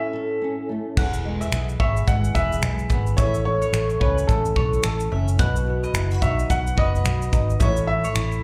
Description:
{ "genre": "acoustic pop", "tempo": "109 BPM", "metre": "4/4", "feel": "swing 60% on 16ths", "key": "E major", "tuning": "A4 = 440 Hz", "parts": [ { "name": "clear upright piano", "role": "melody", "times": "0.0-8.4 s", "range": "A4 to F#5", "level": "-29 LUFS", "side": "equal", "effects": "slapback echo" }, { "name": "flamenco guitar", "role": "accompaniment", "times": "0.0-8.4 s", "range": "E2 to A4", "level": "-30 LUFS", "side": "equal", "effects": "double-tracked, slapback echo" }, { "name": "mandolin", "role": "arpeggios", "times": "1.0-8.3 s", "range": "B4 to F#5", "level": "-36 LUFS", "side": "equal", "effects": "slapback echo, delay" }, { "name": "vintage muted fingered electric bass", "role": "bass", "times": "1.0-8.4 s", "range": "E1 to C#2", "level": "-26 LUFS", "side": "equal", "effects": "none" }, { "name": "modern studio drum kit", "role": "drums", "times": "1.0-8.4 s", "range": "crash cymbal, finger snaps, kick drum, shaker", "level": "-26 LUFS", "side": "equal", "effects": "none" } ], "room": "light reverb, studio reverb", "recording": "live gig heard through the venue's PA, club reverb", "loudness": "-22 LUFS", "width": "mono", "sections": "1.0-8.4 A section", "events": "none", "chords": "0.0 A; 1.0 E; 3.2 A; 5.4 B; 7.6 A" }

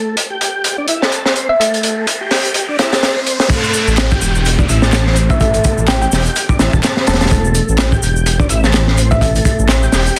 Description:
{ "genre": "breakbeat, breaks", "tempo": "126 BPM", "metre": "4/4", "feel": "swing 57% on 16ths", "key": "A minor", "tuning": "A4 = 440 Hz", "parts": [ { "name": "tonewheel organ", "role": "riff", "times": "0.0-10.2 s", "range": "A3 to A4", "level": "-23 LUFS", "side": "equal", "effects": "chorus vibrato, slow rotary speaker, tape echo" }, { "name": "riser and downlifter", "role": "sound effects", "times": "0.5-7.3 s", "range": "none", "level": "-29 LUFS", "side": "equal", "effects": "none" }, { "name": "crunchy breakbeat drum kit", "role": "drums", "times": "0.2-10.2 s", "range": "crash cymbal, hi-hat, kick drum, snare drum", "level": "-17 LUFS", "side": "equal", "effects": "high-pass filter on kick, high-pass filter on hats, high-pass filter on cymbals, high-pass filter on snare, high-pass filter on room" }, { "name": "thumb-piano-like synth pluck", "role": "melody", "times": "1.5-1.7, 5.3-9.3 s", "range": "E5 to A5", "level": "-22 LUFS", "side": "equal", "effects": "chorus, small speaker sound, vintage 12-bit sampler grit, tape echo" }, { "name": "electronic shaker and handclaps", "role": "drums", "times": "3.5-10.2 s", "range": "none", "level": "-26 LUFS", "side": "equal", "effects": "overdrive" }, { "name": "dark detuned saw bass", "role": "bass", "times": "3.9-10.1 s", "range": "E1 to A1", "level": "-17 LUFS", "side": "equal", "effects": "none" } ], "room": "light reverb", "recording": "dense, heavily limited modern master, vinyl crackle", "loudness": "-14 LUFS", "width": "mono", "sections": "0.0-3.5 A section; 3.5-10.2 B section", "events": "riser 0.5-3.5; drop 3.5-10.2", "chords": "0.0 Am" }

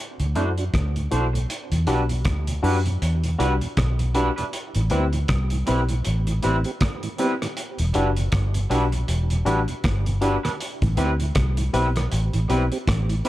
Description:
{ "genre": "lovers rock reggae", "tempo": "79 BPM", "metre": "4/4", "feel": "swing 58% on 16ths", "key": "E minor", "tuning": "A4 = 435 Hz", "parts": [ { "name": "mellow tonewheel organ", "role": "accompaniment", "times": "0.2-13.3 s", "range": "D2 to G4", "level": "-32 LUFS", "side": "right 4 dB", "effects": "slow rotary speaker, dub echo" }, { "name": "vintage muted fingered electric bass", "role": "bass", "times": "0.2-13.2 s", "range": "E1 to F#2", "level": "-22 LUFS", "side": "equal", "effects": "none" }, { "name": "cloth-damped thuddy drum kit", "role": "drums", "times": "0.2-13.3 s", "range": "hi-hat, kick drum, rim click", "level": "-27 LUFS", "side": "equal", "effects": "none" }, { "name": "barky tine electric piano", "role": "accompaniment", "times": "0.4-13.3 s", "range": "C4 to C5", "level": "-28 LUFS", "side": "left 4 dB", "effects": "overdrive" }, { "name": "twangy electric guitar", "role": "stabs", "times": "0.4-13.3 s", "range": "G3 to C5", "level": "-30 LUFS", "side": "right 4 dB", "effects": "harmonic tremolo" } ], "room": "small room reverb", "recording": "dark, warm production", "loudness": "-20 LUFS", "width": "side -15 dB against mid", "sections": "0.0-1.5 A section; 1.5-13.3 B section", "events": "none", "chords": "0.0 D7; 1.5 Em7; 4.5 Am9; 7.6 Em7; 10.6 Am9" }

